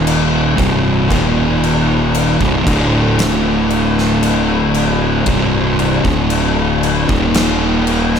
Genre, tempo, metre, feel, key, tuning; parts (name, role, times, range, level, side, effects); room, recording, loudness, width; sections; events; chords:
stoner and doom metal; 58 BPM; 4/4; straight; A4 = 440 Hz
fuzz guitar; riff; 0.0-8.2 s; C2 to Eb3; -14 LUFS; equal; distortion
fuzz fingered electric bass; bass; 0.0-8.2 s; C1 to Eb1; -19 LUFS; equal; overdrive
oversized low-tuned drum kit; drums; 0.1-8.2 s; crash cymbal, kick drum, snare drum; -18 LUFS; left 2 dB
little or no reverb; -12 LUFS; side -7 dB against mid
0.0-8.2 A section
0.0 Eb5; 0.6 C5; 1.1 Eb5; 2.4 C5; 2.7 D5; 5.3 C5; 6.0 D5; 7.1 Eb5